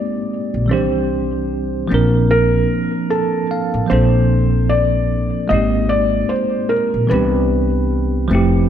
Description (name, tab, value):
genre	hip hop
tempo	75 BPM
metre	4/4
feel	swing 57% on 16ths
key	Bb major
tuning	A4 = 442 Hz
part	felt-muted upright piano	melody	0.0-8.7 s	A4 to Eb5	-20 LUFS	equal	low-pass filter, analog delay
part	bell-like tine electric piano	accompaniment	0.0-8.7 s	Eb3 to A5	-18 LUFS	right 1 dB	medium stereo tremolo, cassette tape, low-pass filter
part	upright bass	bass	0.5-8.7 s	F1 to C2	-18 LUFS	equal	none
room	light reverb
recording	none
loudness	-14 LUFS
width	side -9 dB against mid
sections	0.0-3.9 A section; 3.9-8.7 B section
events	none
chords	0.0 Abmaj9; 0.7 Cadd9; 1.9 Bbmaj9; 5.5 Abmaj9; 7.1 Cmaj9